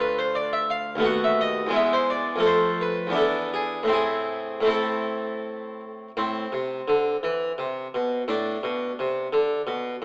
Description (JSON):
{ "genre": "classical, baroque-style suite movement for harpsichord", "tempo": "77-88 BPM", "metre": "3/4", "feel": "rubato", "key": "A minor", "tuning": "A4 = 439 Hz", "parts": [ { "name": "harpsichord", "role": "solo", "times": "0.0-10.0 s", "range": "D2 to F#5", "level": "-25 LUFS", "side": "equal", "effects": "none" } ], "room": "wet recital hall reverb, RT60 1.5 s", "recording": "AM radio sound", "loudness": "-25 LUFS", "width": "mono", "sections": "0.0-6.2 A section; 6.2-10.0 B section", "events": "none", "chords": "0.0 Dm; 1.0 B7/D#; 1.7 E; 2.4 F; 3.2 E7; 3.9 Am; 8.3 D5/A", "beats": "0.34 1.03 | 1.73 2.44 3.16 | 3.91 4.68 5.42 | 6.15 6.86 7.56 | 8.27 8.97 9.66" }